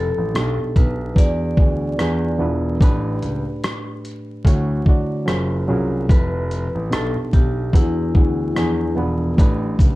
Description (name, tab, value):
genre	lo-fi hip hop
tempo	73 BPM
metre	4/4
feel	swing 57% on 16ths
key	unclear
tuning	A4 = 440 Hz
part	vibraphone with medium hard mallets	melody	0.0-8.9 s	E4 to D5	-26 LUFS	left 2 dB	tape echo, plate reverb
part	barky reed electric piano	accompaniment	0.0-10.0 s	A2 to D5	-23 LUFS	right 1 dB	overdrive, plate reverb
part	dark baby grand piano	bass	0.0-10.0 s	E1 to E2	-24 LUFS	equal	none
part	dusty soul sampler-style drum kit	drums	0.4-10.0 s	hi-hat, kick drum, rim click, shaker	-16 LUFS	equal	none
room	light reverb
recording	dark, warm production, vinyl crackle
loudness	-16 LUFS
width	side -18 dB against mid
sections	0.0-10.0 A section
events	none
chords	0.3 B7alt; 1.2 E7; 2.0 E7b9; 2.8 A7sus4; 4.5 Dmaj7; 5.3 F#maj9#11; 6.1 Fmaj9#11; 6.9 B7alt; 7.7 E7; 8.6 E7b9; 9.4 A7sus4